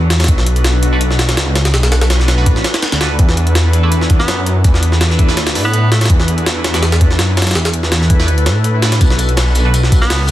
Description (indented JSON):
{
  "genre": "drum and bass, jungle",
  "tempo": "165 BPM",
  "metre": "4/4",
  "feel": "straight",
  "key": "unclear",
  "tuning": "A4 = 439 Hz",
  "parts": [
    { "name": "warbly tape-like pad", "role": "sustained chords", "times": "0.0-10.3 s", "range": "D4 to B4", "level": "-22 LUFS", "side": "left 1 dB", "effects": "chorus, built-in reverb, vintage 12-bit sampler grit" },
    { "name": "detuned saw bass", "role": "bass", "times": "0.0-10.3 s", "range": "A1 to A2", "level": "-13 LUFS", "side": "equal", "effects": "tube saturation" },
    { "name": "jungle sampler-style drum kit", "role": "drums", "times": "0.1-10.3 s", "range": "hi-hat, kick drum, snare drum", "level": "-14 LUFS", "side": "equal", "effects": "small room ambience" },
    { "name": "band-passed chord stab", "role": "stabs", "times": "0.9-9.7 s", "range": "A3 to B4", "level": "-26 LUFS", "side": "right 3 dB", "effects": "phaser, dub echo" },
    { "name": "bright tenor saxophone", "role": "melody", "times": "4.2-6.1, 10.0-10.2 s", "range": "A3 to B3", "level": "-23 LUFS", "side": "right 1 dB", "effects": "dub echo" },
    { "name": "crunchy breakbeat drum kit", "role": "drums", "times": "9.0-10.3 s", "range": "hi-hat, snare drum, tambourine", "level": "-25 LUFS", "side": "left 2 dB", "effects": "high-pass filter on hats, small room ambience, high-pass filter on snare, high-pass filter on perc, high-pass filter on room" }
  ],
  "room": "little or no reverb",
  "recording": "dense, heavily limited modern master, vinyl crackle",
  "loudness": "-10 LUFS",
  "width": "side -14 dB against mid",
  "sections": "0.0-10.3 A section",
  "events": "none",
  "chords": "0.0 Bm7; 3.2 E7sus4; 9.0 Bm7",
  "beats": "| 0.28 0.65 1.01 1.37 | 1.74 2.10 2.46 2.83 | 3.19 3.56 3.92 4.28 | 4.65 5.01 5.37 5.74 | 6.10 6.46 6.83 7.19 | 7.55 7.92 8.28 8.65 | 9.01 9.37 9.74 10.10"
}